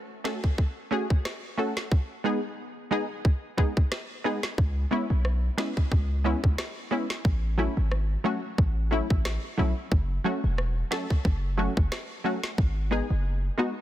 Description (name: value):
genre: dancehall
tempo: 90 BPM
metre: 4/4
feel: swing 56% on 16ths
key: unclear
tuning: A4 = 438 Hz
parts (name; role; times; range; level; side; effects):
- punchy chord stab; accompaniment; 0.2-13.7 s; F#3 to A4; -30 LUFS; equal; chorus, sidechain pumping
- island pop drum kit; drums; 0.3-12.8 s; kick drum, rim click, snare drum; -26 LUFS; equal; soft clipping on snare
- hard-hitting 808-style bass; bass; 4.6-13.5 s; E1 to C#2; -26 LUFS; equal; none
room: little or no reverb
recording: dense, heavily limited modern master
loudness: -25 LUFS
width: side -13 dB against mid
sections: 0.0-13.8 A section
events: none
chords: 0.0 F#m; 1.9 G#m; 4.6 C#m7; 7.2 A6; 9.9 F#m; 12.6 G#m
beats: 0.58 1.25 | 1.92 2.58 3.25 3.92 | 4.58 5.25 5.92 6.58 | 7.25 7.92 8.58 9.25 | 9.92 10.58 11.25 11.92 | 12.58 13.25